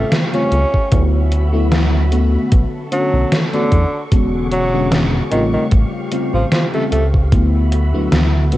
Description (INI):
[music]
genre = vaporwave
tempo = 75 BPM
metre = 4/4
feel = swing 54% on 16ths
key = unclear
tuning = A4 = 439 Hz
[part]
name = clear tenor saxophone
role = melody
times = 0.0-7.1 s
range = D3 to C#4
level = -21 LUFS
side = right 1 dB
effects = tape echo
[part]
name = FM electric piano with soft pad layer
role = accompaniment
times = 0.0-8.6 s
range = C#3 to F#4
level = -20 LUFS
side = left 2 dB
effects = wide subtle chorus, tape echo
[part]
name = soft string machine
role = sustained chords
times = 0.0-8.6 s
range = F#4 to D6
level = -29 LUFS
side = equal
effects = ensemble chorus, vintage 12-bit sampler grit
[part]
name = chorused synth bass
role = bass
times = 0.0-8.6 s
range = E1 to E2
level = -16 LUFS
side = equal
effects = none
[part]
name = gated 80s digital drum machine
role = drums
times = 0.1-8.6 s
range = hi-hat, snare drum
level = -18 LUFS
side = equal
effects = gated reverb, gated reverb snare, vintage 12-bit sampler grit
[part]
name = electronic kick drum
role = drums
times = 0.7-7.5 s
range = none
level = -14 LUFS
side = equal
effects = vintage 12-bit sampler grit
[sound]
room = light reverb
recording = cassette tape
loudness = -13 LUFS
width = side -15 dB against mid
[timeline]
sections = 0.0-8.6 A section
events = none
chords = 0.0 A7alt; 0.9 D69; 2.5 Bm9; 4.1 E13; 5.3 A7alt; 7.3 D69